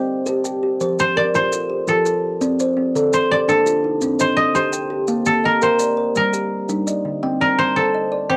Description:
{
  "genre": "southern african traditional, mbira-style interlocking cycle",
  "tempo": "112 BPM (dotted quarters)",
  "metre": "12/8",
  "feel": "straight",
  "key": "C dorian",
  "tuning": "A4 = 441 Hz",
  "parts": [
    { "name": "koto", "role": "melody", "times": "0.0-8.4 s", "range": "G4 to Eb5", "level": "-21 LUFS", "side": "equal", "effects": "none" },
    { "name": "kalimba", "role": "arpeggios", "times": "0.0-8.4 s", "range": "D3 to A5", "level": "-23 LUFS", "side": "equal", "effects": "cassette tape" },
    { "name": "kalimba", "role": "arpeggios", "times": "0.0-8.4 s", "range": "D3 to A5", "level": "-27 LUFS", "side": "equal", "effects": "cassette tape" },
    { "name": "maracas", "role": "percussion", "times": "0.3-7.0 s", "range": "none", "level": "-33 LUFS", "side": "equal", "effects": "none" }
  ],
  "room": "moderate booth ambience, RT60 0.2 s",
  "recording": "home recording on cassette",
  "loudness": "-19 LUFS",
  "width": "mono",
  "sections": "0.0-7.2 A section; 7.2-8.4 B section",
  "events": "none",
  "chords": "0.0 Cm; 0.8 F; 2.9 Dm; 4.0 Cm; 5.1 Bb; 6.2 Gm; 7.2 Cm",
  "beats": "0.26 | 0.80 1.34 1.87 2.41 | 2.95 3.48 4.02 4.55 | 5.09 5.63 6.16 6.70 | 7.23 7.77 8.30"
}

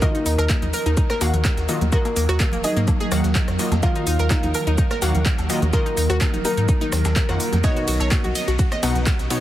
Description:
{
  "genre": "progressive house",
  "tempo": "126 BPM",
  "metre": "4/4",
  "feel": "straight",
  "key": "Eb minor",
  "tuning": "A4 = 440 Hz",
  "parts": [
    { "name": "dark grand piano", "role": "melody", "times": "0.0-8.3 s", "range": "Bb3 to F5", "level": "-28 LUFS", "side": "left 1 dB", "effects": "sidechain pumping, dub echo" },
    { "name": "evolving wavetable pad", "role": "sustained chords", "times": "0.0-9.4 s", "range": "Eb3 to Bb4", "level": "-28 LUFS", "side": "right 1 dB", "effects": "phaser, built-in reverb, sidechain pumping" },
    { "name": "analog pluck", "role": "arpeggios", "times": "0.0-9.4 s", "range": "Bb3 to D#5", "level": "-28 LUFS", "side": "equal", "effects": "chorus, sidechain pumping, dub echo" },
    { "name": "wide unison pluck", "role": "stabs", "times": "0.0-9.4 s", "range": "B2 to Gb5", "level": "-27 LUFS", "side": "left 2 dB", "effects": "sidechain pumping, dub echo" },
    { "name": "breakbeat sampler-style drum kit", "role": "drums", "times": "0.0-9.4 s", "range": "hi-hat, shaker, snare drum", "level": "-35 LUFS", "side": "left 1 dB", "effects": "none" },
    { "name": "deep house drum kit", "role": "drums", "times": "0.0-9.4 s", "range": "handclaps, hi-hat, ride cymbal, rim click", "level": "-28 LUFS", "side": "equal", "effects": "sidechain pumping on hats, sidechain pumping on cymbals" },
    { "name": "electronic kick drum", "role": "drums", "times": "0.0-9.2 s", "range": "none", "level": "-20 LUFS", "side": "equal", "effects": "none" },
    { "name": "woodblock and congas", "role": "percussion", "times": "0.0-9.4 s", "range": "none", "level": "-31 LUFS", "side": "equal", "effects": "sidechain pumping on perc" },
    { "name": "round analog bass", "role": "bass", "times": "0.3-9.3 s", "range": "Eb1 to Ab2", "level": "-22 LUFS", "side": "equal", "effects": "tube saturation, sidechain pumping" }
  ],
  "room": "little or no reverb",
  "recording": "heavily compressed radio sound, multiband compression",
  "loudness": "-18 LUFS",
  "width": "side -13 dB against mid",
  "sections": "0.0-9.4 A section",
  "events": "none",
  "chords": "0.0 Ebmadd9; 7.6 Badd9",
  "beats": "| 0.02 0.50 0.97 1.45 | 1.93 2.40 2.88 3.35 | 3.83 4.31 4.78 5.26 | 5.73 6.21 6.69 7.16 | 7.64 8.12 8.59 9.07"
}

